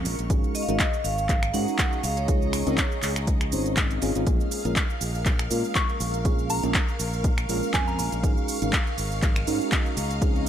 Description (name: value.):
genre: deep house.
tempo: 121 BPM.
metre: 4/4.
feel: swing 55% on 16ths.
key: Bb minor.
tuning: A4 = 439 Hz.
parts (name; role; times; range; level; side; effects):
mellow FM electric piano; stabs; 0.0-10.5 s; Ab3 to C5; -30 LUFS; right 1 dB; chorus, phaser, sidechain pumping, tape echo.
modern bright fingered electric bass; bass; 0.0-10.5 s; Ab1 to Bb2; -29 LUFS; equal; sidechain pumping.
granular cloud pad; texture; 0.0-10.5 s; Ab4 to Db6; -36 LUFS; equal; built-in reverb, sidechain pumping.
deep house drum kit; drums; 0.1-10.5 s; finger snaps, handclaps, hi-hat, shaker; -29 LUFS; right 1 dB; none.
electronic kick drum; drums; 0.3-10.3 s; none; -25 LUFS; equal; none.
vibraphone with hard mallets; melody; 0.5-3.1 s; Db5 to Gb5; -30 LUFS; right 1 dB; tape echo.
string machine, violins; texture; 4.3-10.5 s; F5; -38 LUFS; left 1 dB; ensemble chorus, sidechain pumping.
soft synth bell; melody; 5.8-8.1 s; Ab5 to Db6; -33 LUFS; left 1 dB; chorus, phaser, dub echo.
room: little or no reverb.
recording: none.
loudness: -22 LUFS.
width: side -10 dB against mid.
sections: 0.0-10.5 A section.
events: none.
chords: 0.3 Ab7sus4; 2.0 Dbmaj9; 4.3 Bbm7; 8.2 Ab7sus4; 10.0 Dbmaj9.